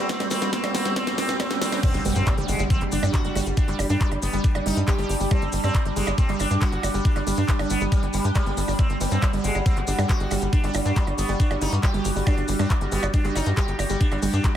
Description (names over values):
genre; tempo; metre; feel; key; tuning
psychedelic trance; 138 BPM; 4/4; straight; G major; A4 = 442 Hz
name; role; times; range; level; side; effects
sitar; melody; 0.0-14.5 s; G3 to G4; -30 LUFS; right 1 dB; phaser, sidechain pumping, analog delay
formant-sweep wobble bass; second line; 0.0-4.2, 9.0-11.1 s; G3 to D4; -38 LUFS; right 2 dB; none
overtone-sweeping drone; sustained chords; 0.0-14.6 s; G3 to F#4; -30 LUFS; right 2 dB; chorus, built-in reverb, sidechain pumping
riser and impact; sound effects; 0.0-3.6 s; none; -32 LUFS; equal; none
electronic kick drum; drums; 0.1-14.5 s; none; -22 LUFS; equal; high-pass filter on kick
techno drum kit; drums; 0.1-14.5 s; crash cymbal, handclaps, hi-hat, percussion blips, snare drum; -30 LUFS; right 1 dB; none
maracas; percussion; 0.1-14.5 s; none; -37 LUFS; left 4 dB; none
wide unison pluck; riff; 0.2-14.5 s; G3 to G4; -30 LUFS; right 1 dB; auto-pan, cassette tape, sidechain pumping, diffuse ambient delay
tight sequencer bass; bass; 1.9-14.4 s; G1 to G2; -25 LUFS; equal; none
room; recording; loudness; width
light reverb, digital ambience; none; -20 LUFS; side -10 dB against mid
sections
0.0-1.8 A section; 1.8-14.6 B section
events
build-up 0.0-1.8; drum fill 0.0-1.8; riser 0.0-1.8; drop 1.8-14.6; impact 1.8-3.6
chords
0.0 G5